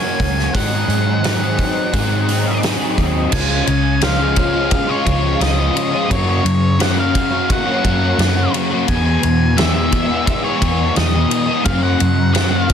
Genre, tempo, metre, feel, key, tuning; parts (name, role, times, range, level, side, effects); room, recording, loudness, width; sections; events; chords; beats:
rock, shoegaze and dream pop; 86 BPM; 4/4; straight; A4 = 440 Hz
octave-fuzz lead guitar; melody; 0.0-12.7 s; Db5 to Ab5; -22 LUFS; left 1 dB; distortion, digital delay
crunchy overdriven guitar; riff; 0.0-12.7 s; E2 to Ab4; -18 LUFS; left 1 dB; ensemble chorus
vintage muted picked electric bass; bass; 0.2-12.7 s; Db2 to Ab2; -19 LUFS; equal
loose indie drum kit; drums; 0.2-12.7 s; crash cymbal, hi-hat, kick drum, ride cymbal, snare drum; -21 LUFS; equal
small room ambience; dense, heavily limited modern master; -14 LUFS; side -8 dB against mid
0.0-3.3 A section; 3.3-12.7 B section
0.0 Gb; 0.5 Ab7; 3.3 Db; 6.1 Gb; 8.9 Emaj7; 11.7 Gb
| 0.55 1.24 1.94 2.63 | 3.33 4.03 4.72 5.42 | 6.11 6.81 7.50 8.20 | 8.89 9.59 10.28 10.97 | 11.67 12.36